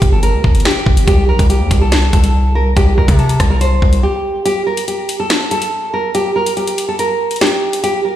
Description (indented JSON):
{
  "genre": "hip hop, drill",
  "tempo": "142 BPM",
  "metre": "4/4",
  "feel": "half-time",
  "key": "unclear",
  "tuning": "A4 = 440 Hz",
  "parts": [
    { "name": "nylon-string guitar", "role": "melody", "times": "0.0-8.2 s", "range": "G4 to C5", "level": "-16 LUFS", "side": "right 1 dB", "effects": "low-pass filter, ping-pong delay" },
    { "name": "distorted 808-style bass", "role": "bass", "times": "0.0-4.0 s", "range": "G1 to C3", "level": "-13 LUFS", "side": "equal", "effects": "distortion" },
    { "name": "drill drum kit", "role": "drums", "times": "0.0-7.9 s", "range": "hi-hat, kick drum, rim click, snare drum", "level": "-15 LUFS", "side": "equal", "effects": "none" }
  ],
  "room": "light reverb",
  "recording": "played on a big sound system in a bare room, stone room reverb",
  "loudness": "-11 LUFS",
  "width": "side -12 dB against mid",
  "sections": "0.0-8.2 A section",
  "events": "break 4.0-4.5, 4.5-8.2",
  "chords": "0.0 Gm; 1.1 C5; 4.5 N.C.",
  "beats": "0.23 0.65 | 1.08 1.50 1.92 2.34 | 2.77 3.19 3.61 4.03 | 4.46 4.88 5.30 5.72 | 6.15 6.57 6.99 7.41 | 7.84"
}